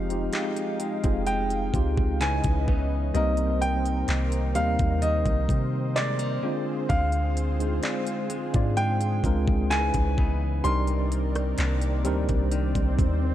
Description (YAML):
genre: contemporary R&B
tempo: 64 BPM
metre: 4/4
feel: straight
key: C minor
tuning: A4 = 440 Hz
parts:
  - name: clear grand piano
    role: melody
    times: 0.0-13.3 s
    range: D5 to C6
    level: -30 LUFS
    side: equal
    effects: tape echo
  - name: tine electric piano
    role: accompaniment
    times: 0.0-13.3 s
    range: Db3 to D5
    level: -30 LUFS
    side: equal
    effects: overdrive, fast stereo tremolo
  - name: lush unison pad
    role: sustained chords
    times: 0.0-13.3 s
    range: Db3 to G5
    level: -35 LUFS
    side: right 1 dB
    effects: chorus
  - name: direct-recorded clean electric guitar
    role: arpeggios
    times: 0.0-13.3 s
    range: C3 to G4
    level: -34 LUFS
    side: left 5 dB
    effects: tape echo
  - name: soft 808-style bass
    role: bass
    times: 0.0-13.3 s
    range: F1 to C3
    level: -26 LUFS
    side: equal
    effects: none
  - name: trap drum kit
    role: drums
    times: 0.1-13.2 s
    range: handclaps, hi-hat, kick drum, rim click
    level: -28 LUFS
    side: equal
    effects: vintage 12-bit sampler grit
  - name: soft round pluck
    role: texture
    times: 7.8-10.1 s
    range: D5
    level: -43 LUFS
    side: right 6 dB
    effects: none
  - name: swell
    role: sound effects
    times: 12.4-13.3 s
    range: none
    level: -37 LUFS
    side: right 1 dB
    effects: none
room: digital ambience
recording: none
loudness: -23 LUFS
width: side -12 dB against mid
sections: 0.0-13.3 A section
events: swell 12.4-13.3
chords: 0.0 Fm9; 2.2 Dbm9; 3.1 Cm7; 6.4 Dm7b5; 9.7 Dbm9; 10.6 Cm9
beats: 0.33 1.27 2.21 | 3.15 4.08 5.02 5.96 | 6.90 7.83 8.77 9.71 | 10.65 11.58 12.52